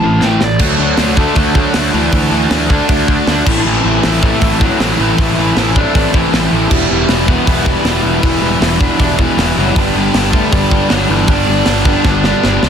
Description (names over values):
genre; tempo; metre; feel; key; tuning
punk rock; 157 BPM; 4/4; straight; unclear; A4 = 440 Hz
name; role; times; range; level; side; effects
dark smooth lead guitar; melody; 0.0-12.6 s; E3 to A5; -18 LUFS; right 1 dB; overdrive, tape echo
biting overdriven guitar; riff; 0.0-12.7 s; G2 to F#4; -19 LUFS; right 1 dB; none
distorted electric guitar; riff; 0.0-12.7 s; G2 to F#4; -18 LUFS; left 12 dB; distortion
distorted electric guitar; riff; 0.0-12.7 s; E2 to D4; -20 LUFS; right 12 dB; distortion
fuzz picked electric bass; bass; 0.0-12.7 s; E1 to D2; -18 LUFS; equal; overdrive
tight metal drum kit; drums; 0.2-12.7 s; crash cymbal, hi-hat, kick drum, snare drum; -16 LUFS; equal; none
room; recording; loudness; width
little or no reverb; dense, heavily limited modern master; -10 LUFS; side -8 dB against mid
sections
0.6-12.7 A section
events
drum fill 0.2-0.6, 12.1-12.7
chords
0.0 Am; 0.6 D; 3.5 Am; 6.7 Em; 9.8 G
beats
0.23 | 0.61 0.99 1.37 1.75 | 2.13 2.52 2.90 3.28 | 3.66 4.04 4.42 4.80 | 5.18 5.57 5.95 6.33 | 6.71 7.09 7.47 7.86 | 8.24 8.62 9.00 9.38 | 9.76 10.14 10.53 10.91 | 11.29 11.67 12.05 12.44